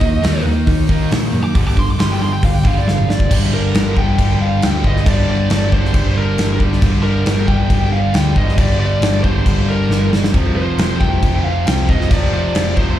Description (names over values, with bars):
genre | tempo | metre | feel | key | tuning
hard rock | 136 BPM | 4/4 | straight | G minor | A4 = 440 Hz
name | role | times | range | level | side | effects
bluesy overdriven lead guitar | melody | 0.0-13.0 s | Bb4 to D6 | -23 LUFS | right 1 dB | distortion, slapback echo, analog delay
distorted electric guitar | riff | 0.0-13.0 s | F2 to Eb4 | -25 LUFS | left 1 dB | overdrive, slapback echo
sludgy distorted guitar | riff | 0.0-13.0 s | F2 to Eb4 | -24 LUFS | left 9 dB | overdrive
tight distorted guitar | riff | 0.0-13.0 s | F2 to Eb4 | -25 LUFS | right 8 dB | distortion, slapback echo
hollow-body short-scale picked electric bass | bass | 0.0-13.0 s | F1 to Bb2 | -17 LUFS | equal | none
gated 80s drum kit | drums | 0.0-12.9 s | crash cymbal, hi-hat, kick drum, snare drum, toms | -17 LUFS | equal | none
room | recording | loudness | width
little or no reverb | live gig heard through the venue's PA, club reverb | -13 LUFS | side -12 dB against mid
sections
0.0-3.3 A section; 3.3-13.0 B section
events
lead electric guitar solo 0.0-3.3; drum fill 2.9-3.3, 9.9-10.3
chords
0.0 Eb5; 1.5 G5; 10.3 F5